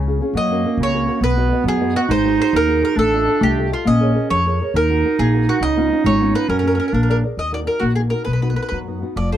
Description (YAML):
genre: italian folk, Italian serenade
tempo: 136 BPM (dotted quarters)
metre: 6/8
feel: rubato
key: F# major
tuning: A4 = 440 Hz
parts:
  - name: nylon-string guitar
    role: accompaniment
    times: 0.0-9.4 s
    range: B2 to D#5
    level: -22 LUFS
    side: left 3 dB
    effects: none
  - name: upright bass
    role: bass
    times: 0.0-9.4 s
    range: F1 to F#2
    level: -21 LUFS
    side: equal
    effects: none
  - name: clear clarinet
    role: second line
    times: 0.3-7.2 s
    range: A#3 to D#4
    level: -20 LUFS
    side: right 7 dB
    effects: none
  - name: mandolin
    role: melody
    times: 0.4-9.4 s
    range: F4 to D#5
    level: -21 LUFS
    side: left 1 dB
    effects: none
room: little or no reverb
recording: dry, close 1970s-style studio recording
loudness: -15 LUFS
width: side -11 dB against mid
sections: 0.0-7.4 A section; 7.4-9.4 B section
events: none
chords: 0.3 F#; 1.2 B; 2.1 G#7; 3.0 F7/A; 3.9 A#m7; 4.7 D#m; 5.6 C#7; 6.5 F#; 6.9 A#7; 7.4 Ebm; 8.3 B